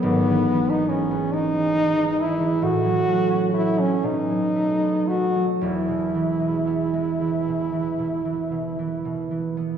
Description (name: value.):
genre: classical, romantic duo for French horn and harp.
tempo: 37-46 BPM (dotted quarters).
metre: 12/8.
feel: rubato.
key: E major.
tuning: A4 = 437 Hz.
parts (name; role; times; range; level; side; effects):
warm French horn; melody; 0.0-9.8 s; B3 to F#4; -22 LUFS; equal; none.
concert harp; accompaniment; 0.0-9.8 s; E1 to C#4; -24 LUFS; right 2 dB; none.
room: wet concert hall reverb, RT60 2.4 s.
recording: heard from further back in the room.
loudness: -20 LUFS.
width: side -8 dB against mid.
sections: 0.0-9.8 A section.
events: none.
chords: 0.0 E/G#; 2.6 F#m/A; 4.0 B7; 5.6 E.